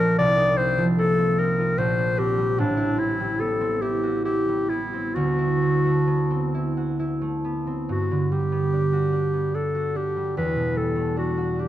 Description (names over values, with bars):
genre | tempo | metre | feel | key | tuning
classical, impressionist duo for clarinet and harp | 65-75 BPM | 3/4 | rubato | G major | A4 = 436 Hz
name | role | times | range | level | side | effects
clear clarinet | melody | 0.0-11.7 s | D4 to D5 | -24 LUFS | left 1 dB | none
concert harp | accompaniment | 0.0-11.7 s | A1 to F#4 | -23 LUFS | right 1 dB | none
room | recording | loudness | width
moderate concert hall reverb, RT60 2.1 s | close, detailed microphones | -21 LUFS | side -13 dB against mid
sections
0.0-7.9 A section; 7.9-11.7 B section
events
none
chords
0.2 Cm11; 1.8 Bb69; 2.6 Am11; 5.2 D13; 7.9 Gmaj7; 10.4 Em11